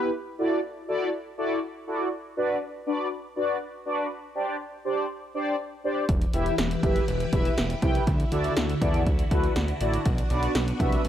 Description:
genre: synth-pop.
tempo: 121 BPM.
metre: 4/4.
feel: straight.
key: unclear.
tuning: A4 = 441 Hz.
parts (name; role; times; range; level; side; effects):
mellow synth brass; accompaniment; 0.0-11.0 s; B3 to G5; -27 LUFS; equal; chorus, phaser.
phased string machine; sustained chords; 6.3-11.1 s; D3 to B4; -32 LUFS; left 1 dB; ensemble chorus, phaser.
fat analog bass; bass; 6.1-11.1 s; E1 to E2; -28 LUFS; equal; none.
punchy analog drum machine; drums; 6.1-11.1 s; hi-hat, kick drum, snare drum; -26 LUFS; equal; none.
room: light reverb.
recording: faint mains hum.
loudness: -24 LUFS.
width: side -10 dB against mid.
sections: 0.0-11.1 A section.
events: none.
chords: 0.1 Dadd9; 2.1 Bm; 4.1 Csus2; 6.1 Em; 8.1 Dadd9; 10.1 Bm.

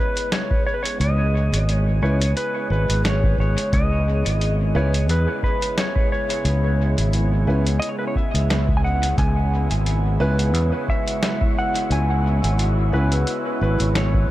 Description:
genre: ambient dub.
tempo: 88 BPM.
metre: 4/4.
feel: swing 55% on 16ths.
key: C# minor.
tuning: A4 = 440 Hz.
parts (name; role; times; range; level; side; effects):
clean lap steel guitar; melody; 0.0-14.3 s; B4 to G#5; -26 LUFS; equal; dub echo.
warbly tape-like pad; sustained chords; 0.0-14.3 s; C#3 to G#4; -28 LUFS; equal; chorus, built-in reverb.
lo-fi sampler-style drum kit; drums; 0.2-14.1 s; hi-hat, snare drum; -28 LUFS; left 1 dB; dub echo.
electronic kick drum; drums; 0.5-14.3 s; none; -22 LUFS; equal; none.
overdriven fingered electric bass; bass; 1.0-14.3 s; G#1 to E2; -19 LUFS; equal; none.
warm upright piano; stabs; 2.0-13.1 s; C#4 to B4; -33 LUFS; right 1 dB; none.
wind-like tuned noise texture; texture; 10.0-14.3 s; E4 to C#5; -32 LUFS; left 1 dB; built-in reverb.
room: little or no reverb.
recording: none.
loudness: -18 LUFS.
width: side -15 dB against mid.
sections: 0.0-14.3 A section.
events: none.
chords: 0.0 C#m7.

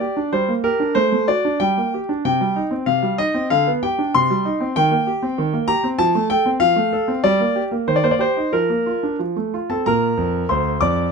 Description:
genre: classical-period piano sonatina.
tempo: 95 BPM.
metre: 2/4.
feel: straight.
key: G minor, Bb major from 4.8 s.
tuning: A4 = 437 Hz.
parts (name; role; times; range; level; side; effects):
clear concert grand piano; solo; 0.0-11.1 s; D2 to D6; -17 LUFS; equal; none.
room: little or no reverb.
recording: close, detailed microphones.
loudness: -17 LUFS.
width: side -5 dB against mid.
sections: 0.0-9.9 A section; 9.9-11.1 B section.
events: none.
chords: 0.0 Gm; 1.0 D7/A; 1.6 Gm; 2.2 Cm; 3.5 G7/D; 4.1 Cm; 4.8 Cm7/Eb; 6.0 F; 7.2 Gm; 7.9 Eb; 8.5 Bb/F; 9.2 F; 9.9 Bb.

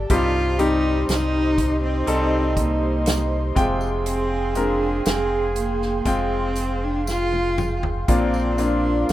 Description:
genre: pop ballad.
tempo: 60 BPM.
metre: 4/4.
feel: straight.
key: unclear.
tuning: A4 = 440 Hz.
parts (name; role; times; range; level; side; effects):
bright concert grand piano; accompaniment; 0.0-9.1 s; G2 to G5; -25 LUFS; left 2 dB; none.
airy breathy pad; sustained chords; 0.0-9.1 s; G4 to C6; -29 LUFS; equal; chorus.
sub bass with octave; bass; 0.0-9.1 s; F1 to C2; -25 LUFS; equal; none.
dark cello; melody; 0.1-9.1 s; Bb3 to F4; -25 LUFS; equal; none.
warm French horn section; second line; 0.1-9.1 s; Eb4 to Ab4; -28 LUFS; right 3 dB; none.
natural country drum kit; drums; 0.1-9.1 s; hi-hat, kick drum, snare drum, toms; -24 LUFS; equal; none.
tambourine; percussion; 0.1-9.1 s; none; -39 LUFS; left 5 dB; none.
room: little or no reverb.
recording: rough home demo mix.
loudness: -19 LUFS.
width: side -14 dB against mid.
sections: 0.0-9.1 A section.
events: drum fill 7.1-8.1.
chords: 0.1 Cm; 3.6 Fmadd9; 8.1 Bbadd9.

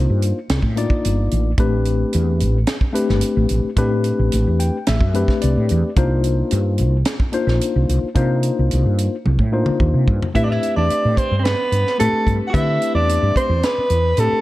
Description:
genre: electric jazz fusion.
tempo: 110 BPM.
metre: 4/4.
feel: straight.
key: unclear.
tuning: A4 = 443 Hz.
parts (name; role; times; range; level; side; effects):
tine electric piano; accompaniment; 0.0-14.4 s; A3 to G5; -22 LUFS; left 4 dB; medium stereo tremolo.
woody fretless electric bass; bass; 0.0-14.4 s; G1 to D3; -18 LUFS; equal; ensemble chorus.
tight funk drum kit; drums; 0.2-14.3 s; hi-hat, kick drum, snare drum, toms; -21 LUFS; right 1 dB; none.
hollow-body jazz guitar; second line; 10.3-14.4 s; A3 to F#4; -27 LUFS; right 3 dB; none.
dark soprano saxophone; melody; 10.4-14.4 s; A4 to F#5; -19 LUFS; right 1 dB; none.
room: light reverb, small room ambience.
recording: dark, warm production.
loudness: -16 LUFS.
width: side -17 dB against mid.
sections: 0.0-10.4 A section; 10.4-14.4 B section.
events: tine electric piano fill 4.3-6.0; drum fill 9.3-10.4.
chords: 0.0 Cm11; 1.6 Am11; 6.0 Cm11; 10.4 Am11.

